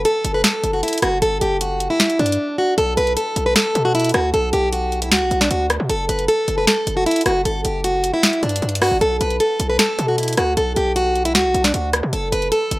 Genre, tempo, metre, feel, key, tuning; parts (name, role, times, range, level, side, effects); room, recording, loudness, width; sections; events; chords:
hip hop, trap; 154 BPM; 4/4; half-time; B minor; A4 = 440 Hz
hard-hitting 808-style bass; bass; 0.0-12.8 s; F#1 to B2; -23 LUFS; equal
picked plugged-in steel-string acoustic guitar; melody; 0.1-12.8 s; D4 to B4; -18 LUFS; equal
trap drum kit; drums; 0.1-12.8 s; hi-hat, rim click, snare drum; -19 LUFS; equal
light reverb; dry, gritty hardware recording; -16 LUFS; side -19 dB against mid
0.0-9.0 A section; 9.0-12.8 A section
break 2.4-2.8
0.0 F#m; 1.2 G5; 2.8 Bm; 5.9 F#m; 7.5 G5; 9.0 Bm; 12.1 F#madd11